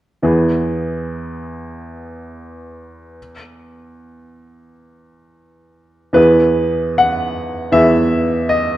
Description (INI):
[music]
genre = classical, romantic character piece for solo piano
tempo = 67-87 BPM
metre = 4/4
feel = rubato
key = E major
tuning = A4 = 439 Hz
[part]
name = clear upright piano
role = solo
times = 0.2-8.8 s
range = E2 to F#5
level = -14 LUFS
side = equal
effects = none
[sound]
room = moderate recital hall reverb, RT60 1.6 s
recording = dark, warm production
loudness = -13 LUFS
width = side -14 dB against mid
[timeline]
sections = 0.2-6.2 A section; 6.2-8.8 B section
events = none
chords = 0.2 E